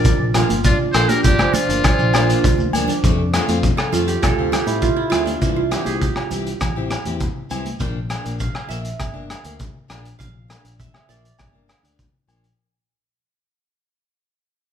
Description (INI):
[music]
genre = highlife guitar band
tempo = 101 BPM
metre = 4/4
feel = straight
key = unclear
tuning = A4 = 438 Hz
[part]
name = trumpet with metal mute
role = melody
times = 0.0-2.7 s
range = F4 to D5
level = -22 LUFS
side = left 1 dB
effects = none
[part]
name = breathy alto saxophone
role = second line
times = 0.0-2.8 s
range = D4 to Bb4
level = -28 LUFS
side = left 4 dB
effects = none
[part]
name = picked plugged-in steel-string acoustic guitar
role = accompaniment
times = 0.0-12.5 s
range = E3 to G4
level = -28 LUFS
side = left 5 dB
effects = none
[part]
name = qanun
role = arpeggios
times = 0.0-12.1 s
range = F3 to G5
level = -22 LUFS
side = right 6 dB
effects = none
[part]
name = crunchy breakbeat drum kit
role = drums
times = 0.0-12.6 s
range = hi-hat, kick drum, rim click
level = -21 LUFS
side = equal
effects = none
[part]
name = shekere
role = percussion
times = 0.0-12.4 s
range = none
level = -28 LUFS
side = right 2 dB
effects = none
[part]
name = fingered electric bass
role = bass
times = 0.2-12.5 s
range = G1 to A2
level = -24 LUFS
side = left 1 dB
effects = none
[part]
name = agogo bells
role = percussion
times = 0.3-12.4 s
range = none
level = -27 LUFS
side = equal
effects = none
[part]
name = congas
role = percussion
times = 0.4-7.8 s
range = none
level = -28 LUFS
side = right 1 dB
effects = none
[sound]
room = moderate large studio reverb, RT60 1.3 s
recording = band playing live in one room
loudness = -16 LUFS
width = side -8 dB against mid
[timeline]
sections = 0.0-3.0 A section; 3.0-12.6 B section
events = drum fill 2.6-3.0; fade-out 3.0-12.6; qanun solo 3.0-12.6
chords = 0.0 Bb; 3.0 F; 5.4 C; 7.8 Bb